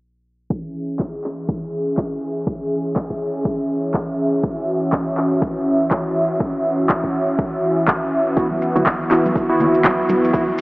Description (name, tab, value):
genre	afro house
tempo	122 BPM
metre	4/4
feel	swing 58% on 16ths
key	C# minor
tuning	A4 = 440 Hz
part	warm analog pad	sustained chords	0.5-10.6 s	E3 to E5	-20 LUFS	equal	chorus, sidechain pumping
part	electronic kick drum	drums	0.5-10.5 s	none	-23 LUFS	equal	overdrive
part	electronic handclaps	drums	1.0-10.0 s	none	-24 LUFS	equal	overdrive
part	warm analog keys	stabs	8.4-10.4 s	B3 to F#4	-17 LUFS	equal	chorus, sidechain pumping, diffuse ambient delay
part	maracas	percussion	8.4-10.6 s	none	-39 LUFS	equal	none
part	congas	percussion	8.5-10.6 s	none	-26 LUFS	equal	none
room	wet huge ambient reverb, RT60 8.0 s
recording	dreamy mix soaked in reverb, low-pass filter, small speaker sound, faint mains hum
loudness	-17 LUFS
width	side -23 dB against mid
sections	0.5-10.6 A section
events	filter sweep 0.5-10.6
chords	0.5 C#m; 8.4 Esus2